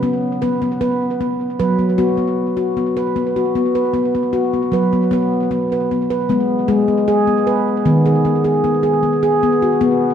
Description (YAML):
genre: world meditative, meditative tuned percussion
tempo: 76 BPM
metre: 4/4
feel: straight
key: B major pentatonic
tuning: A4 = 440 Hz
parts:
  - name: handpan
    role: solo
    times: 0.0-10.1 s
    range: D#3 to B4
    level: -14 LUFS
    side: equal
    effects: tape echo
room: wet concert hall reverb, RT60 2.5 s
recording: dark, warm production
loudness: -14 LUFS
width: side -8 dB against mid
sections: 0.0-6.3 A section; 6.3-10.1 B section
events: none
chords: 0.0 B5; 6.3 G#m; 9.4 B5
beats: | 0.02 0.81 1.59 2.38 | 3.16 3.95 4.73 5.52 | 6.30 7.08 7.86 8.64 | 9.43